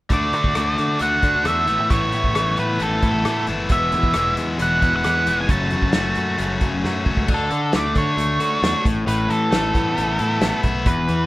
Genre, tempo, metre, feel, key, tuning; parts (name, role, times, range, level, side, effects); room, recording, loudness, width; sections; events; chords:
indie rock; 134 BPM; 4/4; straight; A major; A4 = 440 Hz
octave-fuzz lead guitar; melody; 0.1-11.3 s; A4 to A5; -22 LUFS; right 1 dB; distortion, slapback echo
cranked stack guitar; riff; 0.1-11.3 s; E2 to F#4; -22 LUFS; left 2 dB; overdrive
picked electric bass; bass; 0.1-11.3 s; E1 to D3; -26 LUFS; equal
loose indie drum kit; drums; 0.1-11.2 s; crash cymbal, hi-hat, kick drum, rim click, snare drum; -23 LUFS; equal
studio reverb; rough home demo mix; -17 LUFS; side -17 dB against mid
0.1-7.3 A section; 7.3-11.3 B section
drum fill 6.8-7.3
0.1 D; 1.7 Asus2; 3.7 Eadd9; 5.5 F#m; 7.3 D; 8.9 Asus2